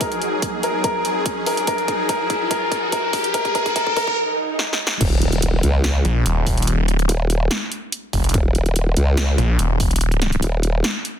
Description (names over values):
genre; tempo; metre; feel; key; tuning
heavy wobble dubstep; 144 BPM; 4/4; half-time; Eb minor; A4 = 441 Hz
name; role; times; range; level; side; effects
warm grand piano; melody; 0.0-4.2 s; Bb4; -22 LUFS; left 2 dB; tape echo
supersaw pad; sustained chords; 0.0-5.0 s; Gb3 to Ab4; -27 LUFS; right 1 dB; sidechain pumping
big-room dance drum kit; drums; 0.0-11.1 s; crash cymbal, hi-hat, snare drum; -25 LUFS; equal; none
electronic kick drum; drums; 0.0-9.9 s; none; -25 LUFS; equal; none
riser, swell and impact; sound effects; 0.0-6.7 s; none; -26 LUFS; right 1 dB; none
formant-sweep wobble bass; bass; 5.0-10.8 s; Eb1 to Db2; -18 LUFS; equal; chorus, overdrive
snarling distorted saw bass; bass; 6.0-10.4 s; Eb1 to Bb1; -18 LUFS; equal; distortion, overdrive
room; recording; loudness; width
light reverb, digital ambience; dense, heavily limited modern master, high-pass filter; -17 LUFS; side -9 dB against mid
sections
0.0-5.0 A section; 5.0-11.2 B section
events
build-up 0.0-5.0; drum fill 0.0-4.2, 4.6-5.0; riser 0.0-4.2; filter sweep 0.0-5.0; swell 4.2-5.0; drop 5.0-11.2; impact 5.0-6.7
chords
0.0 Ebm; 5.0 Eb5